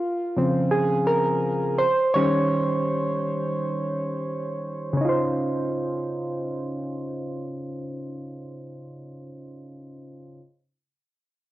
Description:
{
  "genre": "R&B",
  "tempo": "84 BPM",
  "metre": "4/4",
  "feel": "straight",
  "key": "Db major",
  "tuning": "A4 = 440 Hz",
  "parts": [
    { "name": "soft electric-piano-like synth keys", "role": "accompaniment", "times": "0.0-10.4 s", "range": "Db3 to Db5", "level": "-24 LUFS", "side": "right 1 dB", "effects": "chorus, cassette tape" }
  ],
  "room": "wet small room reverb, RT60 0.5 s",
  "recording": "home recording on cassette, low-pass filter",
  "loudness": "-22 LUFS",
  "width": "side -15 dB against mid",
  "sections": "0.0-5.0 A section; 5.0-7.9 B section",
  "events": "synth keys solo 0.0-5.0; filter sweep 0.0-5.0",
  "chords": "0.0 Dbmaj7; 1.8 Eb7; 5.0 Dbmaj7",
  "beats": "0.01 0.72 1.44 | 2.15 2.87 3.58 4.30 | 5.01 5.72 6.44 7.15"
}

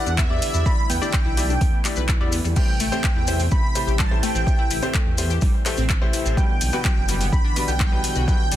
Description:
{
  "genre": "progressive house",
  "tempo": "126 BPM",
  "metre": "4/4",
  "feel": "straight",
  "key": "A dorian",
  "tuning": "A4 = 439 Hz",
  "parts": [
    { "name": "soft supersaw", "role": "melody", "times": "0.0-8.6 s", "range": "E5 to B5", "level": "-28 LUFS", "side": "right 2 dB", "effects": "sidechain pumping, tape echo" },
    { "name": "soft round pluck", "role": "second line", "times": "0.0-8.6 s", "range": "E5 to B5", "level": "-37 LUFS", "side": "equal", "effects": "none" },
    { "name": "warm analog pad", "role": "sustained chords", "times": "0.0-8.6 s", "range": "C3 to E4", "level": "-34 LUFS", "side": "right 2 dB", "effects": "chorus, sidechain pumping" },
    { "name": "clear baby grand piano", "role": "stabs", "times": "0.0-8.4 s", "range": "A2 to D5", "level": "-30 LUFS", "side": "left 4 dB", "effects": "sidechain pumping, tape echo" },
    { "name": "analog pluck", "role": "arpeggios", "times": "0.1-8.6 s", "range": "F#3 to B4", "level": "-30 LUFS", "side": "left 2 dB", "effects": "chorus, sidechain pumping, tape echo" },
    { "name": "dark detuned saw bass", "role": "bass", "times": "0.1-8.6 s", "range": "F#1 to E2", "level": "-24 LUFS", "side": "equal", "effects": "sidechain pumping" },
    { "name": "maracas", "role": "percussion", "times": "0.1-8.6 s", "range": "none", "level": "-32 LUFS", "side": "left 5 dB", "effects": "none" },
    { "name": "big-room dance drum kit", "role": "drums", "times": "0.2-8.6 s", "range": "crash cymbal, handclaps, hi-hat", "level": "-28 LUFS", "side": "equal", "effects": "overdrive" },
    { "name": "electronic kick drum", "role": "drums", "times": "0.2-8.4 s", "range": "none", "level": "-21 LUFS", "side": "equal", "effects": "none" }
  ],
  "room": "little or no reverb",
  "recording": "dense, heavily limited modern master",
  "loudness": "-18 LUFS",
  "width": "side -12 dB against mid",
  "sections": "0.0-8.6 A section",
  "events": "none",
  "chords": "0.0 Em7; 2.6 Am7; 6.4 Gmaj7",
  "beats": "0.18 | 0.66 1.14 1.61 2.09 | 2.56 3.04 3.52 3.99 | 4.47 4.94 5.42 5.90 | 6.37 6.85 7.33 7.80 | 8.28"
}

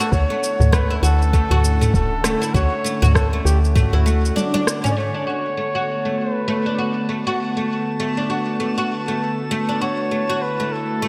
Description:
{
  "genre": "organic downtempo",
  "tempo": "99 BPM",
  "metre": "4/4",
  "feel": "swing 59% on 16ths",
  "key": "B minor",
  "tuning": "A4 = 440 Hz",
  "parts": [
    { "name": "trumpet with bucket mute", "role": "melody", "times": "0.0-11.1 s", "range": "F#4 to D5", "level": "-28 LUFS", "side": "equal", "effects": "vintage 12-bit sampler grit, delay" },
    { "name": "warbly tape-like pad", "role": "sustained chords", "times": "0.0-11.1 s", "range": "D3 to F#5", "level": "-29 LUFS", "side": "equal", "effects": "chorus, built-in reverb, sidechain pumping" },
    { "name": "oud", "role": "arpeggios", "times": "0.0-11.1 s", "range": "A3 to F#4", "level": "-26 LUFS", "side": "equal", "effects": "low-pass filter, delay" },
    { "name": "organic electronic drum kit", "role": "drums", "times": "0.0-5.0 s", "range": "cabasa, rim click, toms", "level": "-25 LUFS", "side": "equal", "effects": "studio reverb, gated reverb" },
    { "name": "woody FM bass", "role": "bass", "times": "0.1-4.3 s", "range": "D1 to D2", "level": "-20 LUFS", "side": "equal", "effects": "tube saturation" },
    { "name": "electronic kick drum", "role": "drums", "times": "0.1-3.9 s", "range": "none", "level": "-21 LUFS", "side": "equal", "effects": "studio reverb" },
    { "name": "drifting glass-harmonics texture", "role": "texture", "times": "6.0-11.1 s", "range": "A5", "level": "-35 LUFS", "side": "equal", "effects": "chorus, built-in reverb" }
  ],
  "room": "moderate lush hall reverb, RT60 2.6 s",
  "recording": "bright 1980s-style digital production",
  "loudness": "-20 LUFS",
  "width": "mono",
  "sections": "0.0-5.0 A section; 5.0-11.1 B section",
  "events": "drum fill 4.4-5.0",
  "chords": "0.1 Dmaj9; 5.0 Bm9; 9.8 Dmaj9",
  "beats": "| 0.12 0.73 1.33 1.94 | 2.54 3.15 3.76 4.36 | 4.97 5.57 6.18 6.79 | 7.39 8.00 8.60 9.21 | 9.82 10.42 11.03"
}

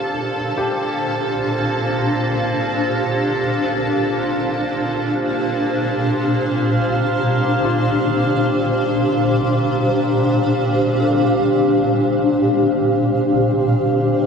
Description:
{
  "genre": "ambient",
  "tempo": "free time",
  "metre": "none",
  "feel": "none",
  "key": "unclear",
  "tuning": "A4 = 440 Hz",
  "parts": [
    { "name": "granular cloud pad", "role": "sustained chords", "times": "0.0-14.3 s", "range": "Bb2 to F5", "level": "-16 LUFS", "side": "equal", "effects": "built-in reverb" },
    { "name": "felt-muted upright piano", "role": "arpeggios", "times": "0.0-14.3 s", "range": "F4 to F5", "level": "-32 LUFS", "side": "left 1 dB", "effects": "none" },
    { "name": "overtone-sweeping drone", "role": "drone", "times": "0.0-11.1 s", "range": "Bb3 to F4", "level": "-27 LUFS", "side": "right 1 dB", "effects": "chorus, built-in reverb, phaser" },
    { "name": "clear studio violin section", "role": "texture", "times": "0.0-11.0 s", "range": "A4 to A5", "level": "-29 LUFS", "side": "equal", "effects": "none" }
  ],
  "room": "wet huge ambient reverb, RT60 8.2 s",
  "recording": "worn, warbling old tape, cassette tape, warbly pitch drift",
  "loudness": "-16 LUFS",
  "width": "side -6 dB against mid",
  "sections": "0.0-11.0 A section; 11.0-14.3 A section",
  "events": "fade-in on synth drone 0.0-11.0; fade-out on violin section 0.0-11.0; filter sweep on ambient pad 11.0-14.3",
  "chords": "0.0 Gm11/Bb",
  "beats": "free time"
}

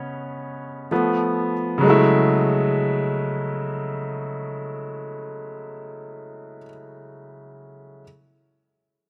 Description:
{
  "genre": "R&B",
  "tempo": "65 BPM",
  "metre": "4/4",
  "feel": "straight",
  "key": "F# minor",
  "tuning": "A4 = 438 Hz",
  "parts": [
    { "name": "clear baby grand piano", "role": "accompaniment", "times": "0.0-8.0 s", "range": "C#3 to C#5", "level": "-23 LUFS", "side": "equal", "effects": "none" }
  ],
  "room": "light reverb, small room reverb",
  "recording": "rough home demo mix",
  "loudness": "-22 LUFS",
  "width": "mono",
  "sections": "0.0-1.8 A section; 1.8-5.5 B section",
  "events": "grand piano solo 0.0-1.8",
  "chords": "0.0 G#madd11/C#; 0.9 F; 1.8 F#m9",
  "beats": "0.91 | 1.83 2.75 3.68 4.60"
}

